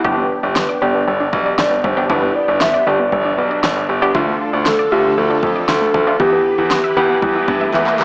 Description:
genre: synth-pop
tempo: 117 BPM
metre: 4/4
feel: straight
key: G mixolydian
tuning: A4 = 440 Hz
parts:
  - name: funky polysynth comp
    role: accompaniment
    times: 0.0-7.8 s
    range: A3 to G4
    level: -20 LUFS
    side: equal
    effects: chorus
  - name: string machine, violas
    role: sustained chords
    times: 0.0-8.0 s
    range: D3 to B4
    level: -24 LUFS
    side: equal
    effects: phaser, ensemble chorus
  - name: wide unison pluck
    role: arpeggios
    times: 0.0-8.0 s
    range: D3 to E5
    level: -24 LUFS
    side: equal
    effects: tape echo
  - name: clear grand piano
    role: bass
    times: 0.0-8.0 s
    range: G1 to G2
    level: -19 LUFS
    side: equal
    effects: none
  - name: deep house drum kit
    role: drums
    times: 0.0-8.0 s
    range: handclaps, kick drum, snare drum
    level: -21 LUFS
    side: equal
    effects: overdrive
  - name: hollow clarinet-like synth lead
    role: melody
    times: 0.6-8.0 s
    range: G4 to E5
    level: -17 LUFS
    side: equal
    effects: chorus
  - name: riser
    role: sound effects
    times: 7.6-8.0 s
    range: none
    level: -27 LUFS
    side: equal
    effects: none
room: moderate digital room reverb, RT60 1.2 s, digital ambience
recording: worn, warbling old tape, cassette tape, warbly pitch drift, small speaker sound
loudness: -13 LUFS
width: side -31 dB against mid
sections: 0.0-8.0 A section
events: drum fill 7.7-8.0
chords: 0.0 G; 4.1 Dm; 6.2 Em

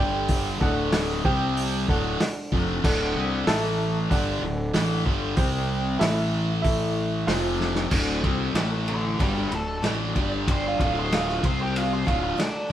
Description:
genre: classic rock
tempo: 94 BPM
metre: 4/4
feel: straight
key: D mixolydian, D major from 7.9 s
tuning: A4 = 440 Hz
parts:
  - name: barky reed electric piano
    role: accompaniment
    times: 0.0-7.8 s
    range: E4 to A5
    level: -29 LUFS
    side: right 2 dB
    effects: overdrive, fast tremolo
  - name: mellow tonewheel organ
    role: sustained chords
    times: 0.0-12.7 s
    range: F#3 to A5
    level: -37 LUFS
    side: left 2 dB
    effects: none
  - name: distorted electric guitar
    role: riff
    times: 0.0-12.7 s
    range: D2 to C4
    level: -30 LUFS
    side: left 7 dB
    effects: distortion
  - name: sludgy distorted guitar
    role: riff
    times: 0.0-12.4 s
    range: D2 to C4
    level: -31 LUFS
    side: right 6 dB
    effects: overdrive
  - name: fuzz fingered electric bass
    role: bass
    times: 0.0-12.4 s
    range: D1 to C2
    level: -28 LUFS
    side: equal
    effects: overdrive
  - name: vintage drum kit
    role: drums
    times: 0.3-12.5 s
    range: crash cymbal, hi-hat, kick drum, ride cymbal, snare drum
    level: -26 LUFS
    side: equal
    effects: none
  - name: picked steel-string acoustic guitar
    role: accompaniment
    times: 7.9-12.7 s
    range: A2 to D5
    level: -34 LUFS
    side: right 2 dB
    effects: none
  - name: octave-fuzz lead guitar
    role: melody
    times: 8.9-12.7 s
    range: D4 to D5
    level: -29 LUFS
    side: right 2 dB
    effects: distortion
room: moderate studio reverb, RT60 0.8 s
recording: band playing live in one room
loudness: -22 LUFS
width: side -11 dB against mid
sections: 0.0-7.9 A section; 7.9-12.7 B section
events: drum fill 7.6-7.9; lead electric guitar solo 7.9-12.7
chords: 0.0 G5; 0.6 D; 1.2 C5; 1.9 D; 3.5 A5; 4.1 D; 5.4 C5; 6.0 A5; 7.3 F5; 7.9 D; 8.6 A5; 9.2 D; 10.1 G5; 10.8 D; 11.4 C5; 12.1 D

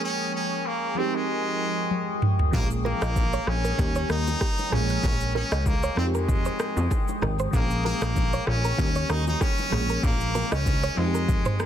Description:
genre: afrobeats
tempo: 96 BPM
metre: 4/4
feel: swing 55% on 16ths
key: Bb dorian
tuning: A4 = 439 Hz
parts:
  - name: brilliant trumpet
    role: melody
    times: 0.0-11.7 s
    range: Ab3 to Eb4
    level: -29 LUFS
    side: equal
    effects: ping-pong delay
  - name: bell-like FM electric piano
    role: accompaniment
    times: 0.0-11.7 s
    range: Eb3 to Ab4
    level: -32 LUFS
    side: right 1 dB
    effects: chorus, phaser, tremolo
  - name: afro-pop drum kit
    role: drums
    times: 1.9-11.7 s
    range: hi-hat, kick drum, rim click, shaker, toms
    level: -26 LUFS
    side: equal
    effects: overdrive
  - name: plucky analog bass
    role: bass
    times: 2.5-11.5 s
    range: Ab1 to F2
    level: -27 LUFS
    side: equal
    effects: none
  - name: congas and bongos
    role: percussion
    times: 2.5-11.4 s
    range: none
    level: -36 LUFS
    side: left 1 dB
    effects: none
  - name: direct-recorded clean electric guitar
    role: riff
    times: 2.9-11.7 s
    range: G4 to Eb5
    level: -34 LUFS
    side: right 4 dB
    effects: analog chorus
room: little or no reverb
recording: dense, heavily limited modern master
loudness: -22 LUFS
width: side -10 dB against mid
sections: 0.0-11.7 A section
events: drum fill 1.9-2.5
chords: 0.0 Bbm7; 1.0 Fm9; 2.5 Bbm7; 3.8 Eb7; 4.7 Bbm7; 6.0 Fm9; 7.5 Bbm7; 8.8 Eb7; 9.7 Bbm7; 11.0 Fm9

